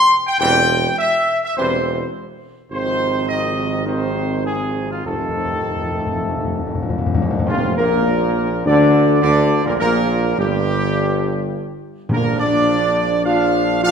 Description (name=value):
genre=classical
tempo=104 BPM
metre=4/4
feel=straight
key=Bb major from 7.5 s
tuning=A4 = 440 Hz
part: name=clear trumpet section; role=melody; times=0.0-13.9 s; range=F4 to C6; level=-19 LUFS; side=equal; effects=none
part: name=bright trombone section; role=sustained chords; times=0.4-13.9 s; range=F2 to D4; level=-24 LUFS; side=right 3 dB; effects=none
part: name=dark French horn section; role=sustained chords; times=0.4-13.9 s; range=F3 to F4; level=-22 LUFS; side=left 3 dB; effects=none
part: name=mellow tuba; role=bass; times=0.4-13.9 s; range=E1 to D2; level=-22 LUFS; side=right 3 dB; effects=none
part: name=timpani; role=percussion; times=5.0-8.3, 12.1-12.9 s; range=F2 to Bb2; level=-22 LUFS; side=left 2 dB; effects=none
room=wet scoring stage reverb, RT60 1.6 s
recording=minimal, uncompressed stereo recording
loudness=-16 LUFS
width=side -6 dB against mid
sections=0.0-7.5 A section; 7.5-13.9 B section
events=timpani fill 5.0-7.5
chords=0.0 C/E; 2.7 Ab6; 5.0 F7; 7.5 Bb6/F; 12.1 Bb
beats=| 0.40 0.98 1.56 2.13 | 2.70 3.28 3.86 4.45 | 5.05 5.65 6.25 6.85 | 7.47 8.08 8.66 9.23 | 9.81 10.38 10.97 11.54 | 12.11 12.68 13.25 13.83